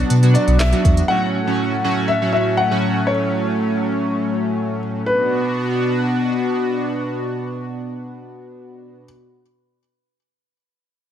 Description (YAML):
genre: dance-pop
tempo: 121 BPM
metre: 4/4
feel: straight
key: B minor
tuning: A4 = 441 Hz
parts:
  - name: warm concert grand piano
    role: melody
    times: 0.0-9.0 s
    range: B4 to F#5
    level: -22 LUFS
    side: left 3 dB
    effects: digital delay
  - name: chorused polysynth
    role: accompaniment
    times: 0.0-3.0 s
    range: A2 to F#4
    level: -20 LUFS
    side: right 2 dB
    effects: none
  - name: chorused pulse-width pad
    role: sustained chords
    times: 0.0-9.0 s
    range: A2 to F#4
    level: -21 LUFS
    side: equal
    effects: sidechain pumping
  - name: sub bass with octave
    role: bass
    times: 0.0-1.0 s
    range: B1 to B2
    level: -14 LUFS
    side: equal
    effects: sidechain pumping
  - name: smooth R&B drum kit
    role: drums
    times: 0.1-1.1 s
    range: handclaps, hi-hat, kick drum, snare drum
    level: -20 LUFS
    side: equal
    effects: none
room: light reverb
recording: none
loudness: -16 LUFS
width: side -10 dB against mid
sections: 0.0-5.1 A section; 5.1-9.0 B section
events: none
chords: 0.0 Bm; 1.1 F#m/A; 5.1 Bm